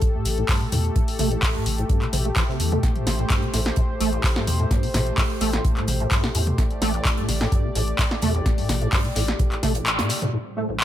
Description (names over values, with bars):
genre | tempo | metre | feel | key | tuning
acid house | 128 BPM | 4/4 | straight | A minor | A4 = 440 Hz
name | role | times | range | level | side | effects
warm analog pad | sustained chords | 0.0-10.8 s | A2 to D5 | -30 LUFS | left 1 dB | chorus, vintage 12-bit sampler grit, sidechain pumping
deep acid bass | riff | 0.0-10.8 s | A1 to A3 | -27 LUFS | right 1 dB | overdrive, ensemble chorus, sidechain pumping, digital delay
electronic kick drum | drums | 0.0-9.7 s | none | -22 LUFS | equal | none
gated 80s drum kit | drums | 0.0-10.2 s | hi-hat, snare drum | -36 LUFS | right 4 dB | sidechain pumping on hats, high-pass filter on hats, high-pass filter on snare, high-pass filter on room
punchy analog drum machine | drums | 0.0-10.8 s | handclaps, hi-hat, snare drum, toms | -25 LUFS | left 1 dB | overdrive
warm sub bass | bass | 0.3-9.8 s | A1 to E2 | -25 LUFS | equal | sidechain pumping
room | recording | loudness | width
light reverb | none | -20 LUFS | side -12 dB against mid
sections
0.0-10.3 A section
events
filter sweep on acid bass 0.0-10.3; kick drops out 9.9-10.3; band accent 9.9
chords
0.0 Am7